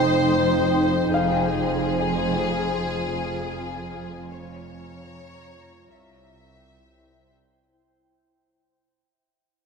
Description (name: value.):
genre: cinematic, suspense film score.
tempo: free time.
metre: none.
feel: none.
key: F minor.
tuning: A4 = 439 Hz.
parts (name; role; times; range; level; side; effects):
rich symphonic violin section; melody; 0.0-7.3 s; Ab4 to E5; -27 LUFS; left 4 dB; none.
glassy FM pad; sustained chords; 0.0-7.6 s; Eb4 to Bb5; -25 LUFS; equal; ensemble chorus, built-in reverb.
dark symphonic double bass section; bass; 0.0-7.3 s; F1 to C2; -31 LUFS; right 6 dB; none.
rich symphonic cello section; bass; 0.0-7.4 s; C2 to F2; -29 LUFS; right 2 dB; none.
clear baby grand piano; texture; 0.0-4.3 s; F5; -30 LUFS; left 6 dB; none.
room: wet scoring stage reverb, RT60 1.6 s.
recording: none.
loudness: -21 LUFS.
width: side -5 dB against mid.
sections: 0.0-7.6 A section.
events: fade-out 0.0-7.6.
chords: 0.0 Cm/F; 1.1 Fm; 4.3 Bbm/F; 5.9 C.